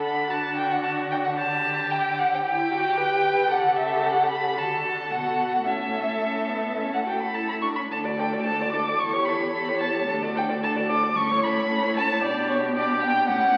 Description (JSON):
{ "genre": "quick classical-period movement for string quartet", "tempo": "112 BPM", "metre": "4/4", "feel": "rubato", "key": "D major", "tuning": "A4 = 442 Hz", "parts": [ { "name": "warm violin", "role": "melody", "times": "0.0-13.6 s", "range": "C#5 to D6", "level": "-26 LUFS", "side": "equal", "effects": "none" }, { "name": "warm violin", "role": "second line", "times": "0.0-13.6 s", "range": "F#4 to D5", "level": "-31 LUFS", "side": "equal", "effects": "none" }, { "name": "warm viola", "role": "accompaniment", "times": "0.0-13.6 s", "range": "B3 to G4", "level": "-34 LUFS", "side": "equal", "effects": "none" }, { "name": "rich cello", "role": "bass", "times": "0.0-13.6 s", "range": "D2 to D3", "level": "-35 LUFS", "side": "equal", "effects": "none" } ], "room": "wet recital hall reverb, RT60 1.8 s", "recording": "very old 78 rpm record, vinyl crackle", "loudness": "-24 LUFS", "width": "mono", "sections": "0.0-13.6 A section", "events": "none", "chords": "0.0 D; 1.4 Em7/D; 3.5 A7/C#; 4.6 D; 5.7 A; 7.9 D; 9.0 A7/E; 10.1 D; 11.2 A; 12.2 G/B" }